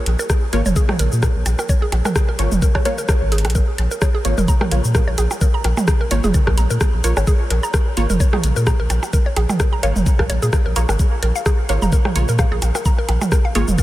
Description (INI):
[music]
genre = minimal techno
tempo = 129 BPM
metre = 4/4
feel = swing 55% on 16ths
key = Bb minor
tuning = A4 = 439 Hz
[part]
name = saturated sub bass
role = bass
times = 0.1-13.8 s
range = F1 to Bb2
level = -18 LUFS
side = equal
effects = sidechain pumping
[part]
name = garage drum kit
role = drums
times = 0.1-13.8 s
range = cabasa, hi-hat, rim click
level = -25 LUFS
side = left 1 dB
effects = none
[part]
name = mallet-like synth pluck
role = riff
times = 0.2-13.8 s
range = Ab4 to Bb5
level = -25 LUFS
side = equal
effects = chorus, sidechain pumping, analog delay
[part]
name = minimal click drum kit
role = percussion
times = 0.2-13.8 s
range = claves, percussion blips, rim click, toms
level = -25 LUFS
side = right 3 dB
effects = analog delay
[part]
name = electronic kick drum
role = drums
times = 0.3-13.8 s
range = none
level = -17 LUFS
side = equal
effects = none
[part]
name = filtered dub chord stab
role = stabs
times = 0.5-13.7 s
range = Bb3 to Db5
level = -28 LUFS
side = equal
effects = phaser, analog chorus, analog delay
[sound]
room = light reverb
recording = none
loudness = -15 LUFS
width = side -15 dB against mid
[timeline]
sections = 0.0-13.8 A section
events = drum fill 3.3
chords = 0.0 Bb5